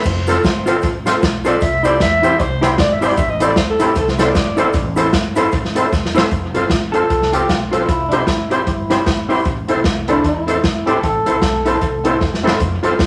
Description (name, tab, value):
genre	ska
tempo	153 BPM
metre	4/4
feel	swing 59% on 8ths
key	A minor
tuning	A4 = 440 Hz
part	breathy alto saxophone	melody	0.0-4.8 s	G4 to E5	-21 LUFS	equal	none
part	cabasa	percussion	0.0-6.2 s	none	-44 LUFS	equal	none
part	upright bass	bass	0.1-13.1 s	E1 to E2	-28 LUFS	equal	none
part	swinging big-band drum kit	drums	0.1-13.1 s	crash cymbal, hi-hat, kick drum, snare drum	-21 LUFS	equal	tape echo
part	hollow-body jazz guitar	accompaniment	0.3-13.0 s	E4 to C5	-21 LUFS	equal	tape echo
part	tonewheel organ	stabs	0.3-12.9 s	C4 to C5	-25 LUFS	equal	overdrive, slow rotary speaker
part	electric guitar at the edge of break-up	melody	6.9-12.4 s	D4 to A4	-22 LUFS	equal	none
room	wet studio reverb, RT60 0.6 s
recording	none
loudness	-16 LUFS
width	mono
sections	0.0-6.3 A section; 6.3-13.1 B section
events	alto saxophone solo 0.0-6.3; drum fill 5.9-6.3, 12.2-12.6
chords	0.0 F; 1.6 C; 3.2 Am; 6.3 F; 7.9 C; 9.5 Am